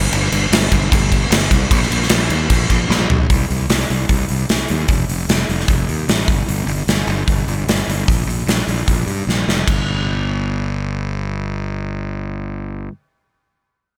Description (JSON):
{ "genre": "hard rock", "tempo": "151 BPM", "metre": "4/4", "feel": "straight", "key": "unclear", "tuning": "A4 = 440 Hz", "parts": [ { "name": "fuzz fingered electric bass", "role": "bass", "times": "0.0-12.9 s", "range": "F1 to G2", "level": "-22 LUFS", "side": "equal", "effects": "overdrive" }, { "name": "big rock drum kit", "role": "drums", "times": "0.1-9.8 s", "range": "crash cymbal, hi-hat, kick drum, snare drum, toms", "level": "-19 LUFS", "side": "equal", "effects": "none" } ], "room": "light reverb", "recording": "none", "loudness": "-18 LUFS", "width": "mono", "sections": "0.0-3.3 A section; 3.3-9.7 B section; 9.7-12.9 C section", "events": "drum fill 2.9-3.3, 9.3-9.7", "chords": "none", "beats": "| 0.12 0.51 0.91 1.30 | 1.70 2.10 2.49 2.89 | 3.29 3.68 4.08 4.48 | 4.88 5.28 5.67 6.07 | 6.47 6.87 7.27 7.67 | 8.07 8.47 8.87 9.27 | 9.66 10.06 10.46 10.86 | 11.26 11.66 12.06 12.45" }